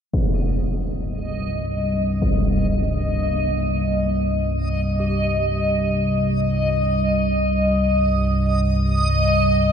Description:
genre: dark ambient drone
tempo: free time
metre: none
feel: none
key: C minor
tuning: A4 = 440 Hz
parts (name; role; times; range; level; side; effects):
- analog drone; drone; 0.8-9.7 s; C2 to G2; -20 LUFS; equal; chorus
- impact; percussion; 0.1-2.4 s; none; -25 LUFS; equal; low-pass filter on sfx
- backwards swelling texture; texture; 1.2-9.7 s; Eb5; -23 LUFS; equal; built-in reverb, shimmer reverb
- gamelan-type bronze metallophone; arpeggios; 0.3-9.7 s; G3 to G4; -40 LUFS; right 4 dB; none
room: wet cathedral reverb, RT60 6.0 s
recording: none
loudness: -18 LUFS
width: side -8 dB against mid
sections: 0.1-9.7 A section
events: none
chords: 0.1 Cm

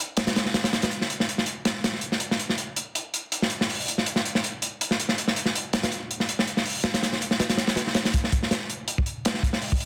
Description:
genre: drum and bass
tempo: 162 BPM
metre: 4/4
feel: swing 54% on 16ths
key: none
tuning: none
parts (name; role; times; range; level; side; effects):
- crunchy breakbeat drum kit; drums; 0.2-9.9 s; hi-hat, kick drum, snare drum; -26 LUFS; equal; none
room: moderate digital room reverb, RT60 1.1 s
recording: dense, heavily limited modern master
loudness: -26 LUFS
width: mono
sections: 0.0-8.1 A section; 8.1-9.9 B section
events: build-up 8.1-9.9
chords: none

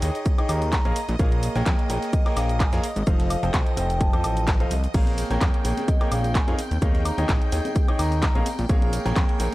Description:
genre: piano house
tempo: 128 BPM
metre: 4/4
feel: swing 54% on 16ths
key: Bb dorian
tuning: A4 = 440 Hz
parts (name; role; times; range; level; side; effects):
- string machine, violins; sustained chords; 0.0-9.5 s; Eb5 to G6; -38 LUFS; equal; ensemble chorus, sidechain pumping
- clear grand piano; riff; 0.0-9.5 s; F3 to G5; -29 LUFS; right 1 dB; sidechain pumping
- fat analog bass; bass; 0.0-9.5 s; F1 to F2; -25 LUFS; equal; tube saturation, sidechain pumping
- electronic shaker and snare drum; drums; 0.0-9.5 s; none; -42 LUFS; equal; none
- house drum kit; drums; 0.0-9.5 s; crash cymbal, handclaps, hi-hat, shaker, woodblock; -32 LUFS; equal; overdrive
- electronic kick drum; drums; 0.3-9.3 s; none; -22 LUFS; equal; overdrive
- vibraphone with soft mallets; melody; 0.5-8.5 s; Eb5 to Bb5; -33 LUFS; left 1 dB; vintage 12-bit sampler grit
- congas and tambourine; percussion; 4.9-9.5 s; none; -35 LUFS; left 2 dB; none
room: little or no reverb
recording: dry, gritty hardware recording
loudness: -20 LUFS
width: side -18 dB against mid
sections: 0.0-9.5 A section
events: none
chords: 0.0 Bbm7; 3.1 F7; 4.9 Bbm7

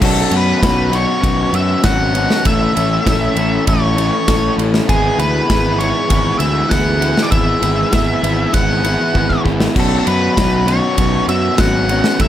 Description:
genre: indie rock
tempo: 98 BPM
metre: 4/4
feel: straight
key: unclear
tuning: A4 = 440 Hz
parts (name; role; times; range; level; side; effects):
- octave-fuzz lead guitar; melody; 0.0-12.3 s; G#4 to F#5; -19 LUFS; equal; distortion
- overdriven electric guitar; riff; 0.0-12.3 s; G#2 to E4; -21 LUFS; right 6 dB; wide subtle chorus, analog delay
- raw garage guitar; riff; 0.0-12.3 s; E3 to A4; -20 LUFS; left 6 dB; overdrive
- fuzz fingered electric bass; bass; 0.0-12.3 s; G#1 to F#2; -19 LUFS; equal; overdrive
- big rock drum kit; drums; 0.0-12.3 s; crash cymbal, kick drum, ride cymbal, snare drum, splash cymbal; -19 LUFS; equal; none
room: light reverb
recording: none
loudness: -12 LUFS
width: side -11 dB against mid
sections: 0.0-12.3 A section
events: drum fill 9.2-9.8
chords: 0.0 Bsus2; 2.5 A; 4.9 Eadd9/G#; 9.8 Bsus2

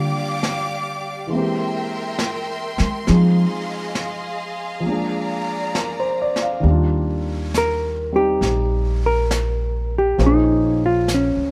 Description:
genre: jazz ballad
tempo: 68 BPM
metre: 4/4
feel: swing 66% on 8ths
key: Eb major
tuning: A4 = 440 Hz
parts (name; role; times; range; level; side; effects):
- warm concert grand piano; accompaniment; 0.0-11.5 s; D3 to F5; -27 LUFS; equal; none
- warm symphonic string section; sustained chords; 0.0-6.6 s; G4 to D6; -29 LUFS; equal; none
- upright bass; bass; 0.0-11.5 s; Bb1 to Ab3; -22 LUFS; equal; none
- jazz brush drum kit; drums; 0.4-11.5 s; brushed snare drum, hi-hat, snare drum; -31 LUFS; equal; none
- hollow-body jazz guitar; melody; 7.6-11.5 s; Db4 to Bb4; -21 LUFS; equal; none
room: little or no reverb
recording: none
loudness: -20 LUFS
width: mono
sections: 0.0-6.6 A section; 6.6-11.5 B section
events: upright bass solo 0.0-6.6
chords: 0.0 Bb6/D; 1.3 C7b13; 3.1 Fm7; 4.8 Bb7; 6.6 Ebmaj9; 10.2 Bbm9

